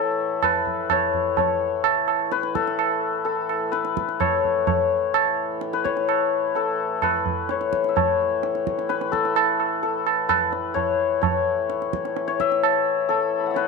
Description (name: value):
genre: indian classical, Hindustani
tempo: 128 BPM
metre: 7/4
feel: straight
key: unclear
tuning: A4 = 442 Hz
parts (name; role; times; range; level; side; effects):
- santur; melody; 0.0-13.7 s; A4 to B5; -23 LUFS; left 9 dB; none
- hand-pumped harmonium; drone; 0.0-13.7 s; A2 to E3; -31 LUFS; right 2 dB; stereo widening
- tabla; percussion; 0.4-13.7 s; none; -24 LUFS; right 14 dB; none
room: light reverb, small room ambience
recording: 1960s-style stereo with parts hard left and right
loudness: -20 LUFS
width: side -3 dB against mid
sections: 0.0-13.7 A section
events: none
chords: none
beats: 0.43 0.91 | 1.38 1.85 2.32 2.79 3.26 3.73 4.20 | 4.67 5.14 5.61 6.08 6.55 7.02 7.49 | 7.96 8.42 8.89 9.36 9.83 10.30 10.76 | 11.23 11.70 12.16 12.63 13.10 13.56